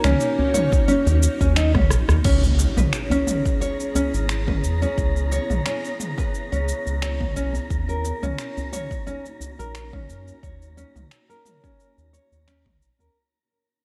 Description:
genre	organic downtempo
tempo	88 BPM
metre	4/4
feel	swing 54% on 16ths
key	unclear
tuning	A4 = 441 Hz
part	granular cloud pad	sustained chords	0.0-13.1 s	A#3 to C#5	-34 LUFS	equal	built-in reverb, sidechain pumping
part	nylon-string guitar	arpeggios	0.0-13.2 s	C#4 to C#5	-28 LUFS	equal	low-pass filter, digital delay
part	round analog bass	bass	0.0-13.1 s	G#1 to F#2	-24 LUFS	equal	none
part	organic electronic drum kit	drums	0.0-13.1 s	cabasa, crash cymbal, finger snaps, rim click, toms	-30 LUFS	equal	none
part	djembe	percussion	0.1-13.1 s	none	-32 LUFS	equal	none
part	electronic kick drum	drums	0.7-12.8 s	none	-26 LUFS	equal	none
part	impact	sound effects	2.2-5.0 s	none	-31 LUFS	equal	none
part	wind-like tuned noise texture	texture	3.0-13.2 s	A#5	-40 LUFS	equal	built-in reverb
room	light reverb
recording	none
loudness	-22 LUFS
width	mono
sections	0.0-2.2 A section; 2.2-13.2 B section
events	drum fill 1.7-2.2; fade-out 2.2-13.2; impact 2.2-5.0; filter sweep on analog synth bass 2.2-13.2; filter sweep on ambient pad 2.2-13.2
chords	0.0 D#m7; 2.2 C#m7; 7.7 D#m7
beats	0.20 0.88 1.56 | 2.25 2.93 3.61 4.29 | 4.97 5.66 6.34 7.02 | 7.70 8.38 9.06 9.75 | 10.43 11.11 11.79 12.47

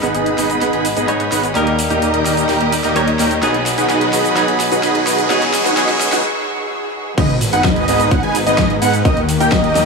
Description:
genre	EDM, festival progressive house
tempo	128 BPM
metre	4/4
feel	straight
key	G# minor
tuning	A4 = 438 Hz
part	direct-recorded clean electric guitar	accompaniment	0.0-6.2 s	F#3 to C#5	-21 LUFS	left 2 dB	sidechain pumping, tape echo
part	rich symphonic string section	sustained chords	0.0-9.9 s	D#3 to E6	-22 LUFS	right 2 dB	sidechain pumping
part	dense compressed supersaw	riff	0.0-9.9 s	A#3 to G#5	-18 LUFS	right 1 dB	sidechain pumping, low-pass filter, tape echo
part	detuned saw bass	bass	0.0-9.9 s	E1 to G#2	-23 LUFS	left 1 dB	tube saturation, sidechain pumping
part	big-room dance drum kit	drums	0.0-9.9 s	cabasa, crash cymbal, hi-hat, ride cymbal, snare drum	-23 LUFS	left 1 dB	overdrive, high-pass filter on snare, high-pass filter on hats, high-pass filter on perc, high-pass filter on cymbals
part	riser and sub drop	sound effects	2.8-9.1 s	none	-26 LUFS	equal	none
part	wide unison lead	arpeggios	7.2-9.9 s	D#5 to G#5	-18 LUFS	equal	sidechain pumping, tape echo
part	electronic kick drum	drums	7.2-9.6 s	none	-18 LUFS	equal	none
room	moderate huge ambient reverb, RT60 9.1 s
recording	high-pass filter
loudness	-13 LUFS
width	side -3 dB against mid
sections	0.0-7.2 A section; 7.2-9.9 B section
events	build-up 0.0-7.2; drum fill 0.0-6.2; filter sweep 0.0-7.2; riser 2.8-6.2; break 6.2-7.2; drop 7.2-9.9; impact 7.2-9.1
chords	0.0 G#m; 1.6 D#; 3.4 B6; 5.3 E6; 7.2 G#m; 9.1 D#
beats	0.15 0.61 1.08 | 1.55 2.02 2.49 2.96 | 3.43 3.90 4.37 4.83 | 5.30 5.77 6.24 6.71 | 7.18 7.65 8.12 8.58 | 9.05 9.52

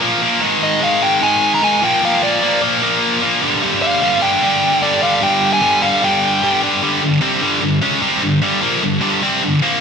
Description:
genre	rock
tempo	150 BPM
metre	4/4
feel	straight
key	G phrygian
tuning	A4 = 440 Hz
part	heavy high-gain guitar	riff	0.0-9.8 s	G2 to C#4	-14 LUFS	equal	distortion
part	dark smooth lead guitar	melody	0.6-6.6 s	D5 to Bb5	-17 LUFS	equal	overdrive
room	wet lush hall reverb, RT60 2.5 s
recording	bright 1980s-style digital production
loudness	-13 LUFS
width	side -6 dB against mid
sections	0.0-6.8 A section; 6.8-9.8 B section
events	none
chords	0.4 Ab5; 1.8 Bb; 3.4 G5; 6.8 Gm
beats	0.02 | 0.42 0.82 1.22 1.62 | 2.02 2.42 2.82 3.22 | 3.62 4.02 4.42 4.82 | 5.22 5.62 6.02 6.42 | 6.82 7.22 7.63 8.03 | 8.43 8.83 9.23 9.63

